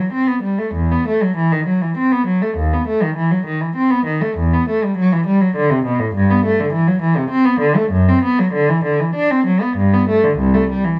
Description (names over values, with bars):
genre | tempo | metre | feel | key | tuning
classical, baroque-style suite movement for unaccompanied cello | 100 BPM | 3/4 | uneven beats, rubato | E minor, G major from 6.1 s | A4 = 441 Hz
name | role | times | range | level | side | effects
rich cello | solo | 0.0-11.0 s | C2 to D4 | -16 LUFS | equal | none
room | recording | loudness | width
light reverb | dark, warm production | -16 LUFS | mono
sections
0.0-11.0 A section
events
none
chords
none